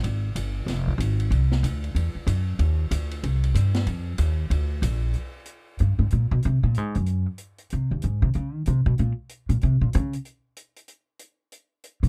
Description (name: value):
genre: jazz piano trio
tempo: 188 BPM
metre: 4/4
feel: swing 63% on 8ths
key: unclear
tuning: A4 = 441 Hz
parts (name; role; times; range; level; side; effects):
- upright bass; bass; 0.0-12.1 s; F1 to Eb3; -24 LUFS; equal; none
- open jazz drum kit; drums; 0.0-12.1 s; hi-hat, kick drum, ride cymbal, snare drum; -38 LUFS; equal; none
room: little or no reverb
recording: dry, close 1970s-style studio recording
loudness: -25 LUFS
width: mono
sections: 0.0-5.1 A section; 5.1-12.1 B section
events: upright bass solo 5.1-12.1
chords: none